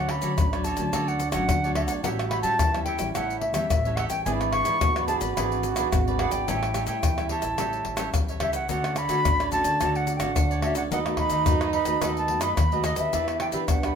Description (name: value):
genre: samba and choro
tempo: 108 BPM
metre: 4/4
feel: straight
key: D major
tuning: A4 = 438 Hz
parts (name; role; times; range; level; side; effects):
- silver concert flute; melody; 0.0-13.9 s; D#5 to C#6; -27 LUFS; equal; none
- mellow trombone; second line; 0.0-14.0 s; C#4 to F#4; -32 LUFS; right 8 dB; none
- cavaquinho; accompaniment; 0.0-14.0 s; D4 to E5; -33 LUFS; right 4 dB; none
- nylon-string guitar; accompaniment; 0.0-14.0 s; G#2 to G4; -33 LUFS; left 5 dB; none
- upright bass; bass; 0.0-14.0 s; G#1 to E3; -31 LUFS; equal; none
- pandeiro, tamborim, egg shaker and surdo; percussion; 0.1-14.0 s; none; -27 LUFS; left 2 dB; none
room: moderate studio reverb, RT60 0.8 s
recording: minimal, uncompressed stereo recording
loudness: -22 LUFS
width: side -7 dB against mid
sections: 0.0-14.0 A section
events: none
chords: 0.0 Dmaj7; 2.0 A7; 4.3 E7/G#; 6.5 A7; 8.7 Dmaj7; 10.9 B7/D#; 13.1 Em7